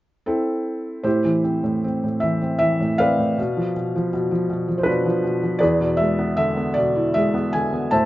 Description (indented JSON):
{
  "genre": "classical, lyrical solo piano",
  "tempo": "78 BPM",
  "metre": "3/4",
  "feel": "rubato",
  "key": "A minor",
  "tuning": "A4 = 439 Hz",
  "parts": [
    { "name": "felt-muted upright piano", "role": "solo", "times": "0.3-8.1 s", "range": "E2 to A5", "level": "-18 LUFS", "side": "equal", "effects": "none" }
  ],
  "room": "light reverb",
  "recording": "nothing above 7.5 kHz",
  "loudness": "-19 LUFS",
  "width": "side -16 dB against mid",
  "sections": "0.0-1.0 A section; 1.0-8.1 B section",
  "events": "none",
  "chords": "0.0 Am; 1.0 Am7; 3.4 Bdim; 5.6 E7",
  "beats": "0.27 | 1.04 1.83 2.60 | 3.38 4.13 4.87 | 5.61 6.38 7.15 | 7.92"
}